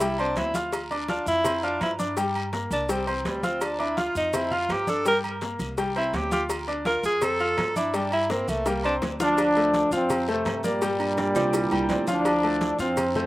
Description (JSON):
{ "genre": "latin, salsa", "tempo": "166 BPM", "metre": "4/4", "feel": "straight", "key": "D minor", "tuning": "A4 = 442 Hz", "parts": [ { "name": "breathy tenor saxophone", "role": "melody", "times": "0.0-9.0 s", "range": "E3 to Bb4", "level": "-25 LUFS", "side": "equal", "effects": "slapback echo" }, { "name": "clear concert grand piano", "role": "accompaniment", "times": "0.0-13.3 s", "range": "F3 to F6", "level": "-29 LUFS", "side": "left 1 dB", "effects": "slapback echo" }, { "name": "upright bass", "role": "bass", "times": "0.0-13.3 s", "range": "C2 to G2", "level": "-36 LUFS", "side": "equal", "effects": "none" }, { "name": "agogo bells and timbales", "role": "percussion", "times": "0.0-13.3 s", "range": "none", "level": "-35 LUFS", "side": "right 3 dB", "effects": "none" }, { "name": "congas", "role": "percussion", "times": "0.0-13.3 s", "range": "none", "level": "-35 LUFS", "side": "equal", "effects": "none" }, { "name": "cowbell and bongos", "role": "percussion", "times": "0.0-13.2 s", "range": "none", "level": "-33 LUFS", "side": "left 3 dB", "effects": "none" }, { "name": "maracas", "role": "percussion", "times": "0.0-13.3 s", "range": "none", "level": "-42 LUFS", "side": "right 4 dB", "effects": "none" }, { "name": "guiro", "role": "percussion", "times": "0.4-13.3 s", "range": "none", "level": "-43 LUFS", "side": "left 4 dB", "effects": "none" }, { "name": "warm trombone section", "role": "melody", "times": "9.2-13.3 s", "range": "Bb2 to D4", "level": "-23 LUFS", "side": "equal", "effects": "slapback echo" }, { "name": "kalimba", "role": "second line", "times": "11.0-12.0 s", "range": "D4 to F4", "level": "-30 LUFS", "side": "right 4 dB", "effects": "slapback echo" } ], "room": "little or no reverb", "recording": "recorded outdoors, with no room sound", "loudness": "-22 LUFS", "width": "side -17 dB against mid", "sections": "0.0-9.4 A section; 9.4-13.3 B section", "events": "tenor saxophone solo 0.0-9.4; drum fill 8.3-9.4", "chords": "0.0 Csus2; 0.7 Dm; 1.4 Fsus2; 2.2 Gm; 2.9 Csus2; 3.6 Dm; 4.3 Fsus2; 5.1 Gm; 5.8 Csus2; 6.5 Dm; 7.2 Fadd9; 7.9 Gm; 8.7 Csus2; 9.4 Dm; 10.1 Fadd9; 10.8 Gm; 11.5 Csus2; 12.3 Dm" }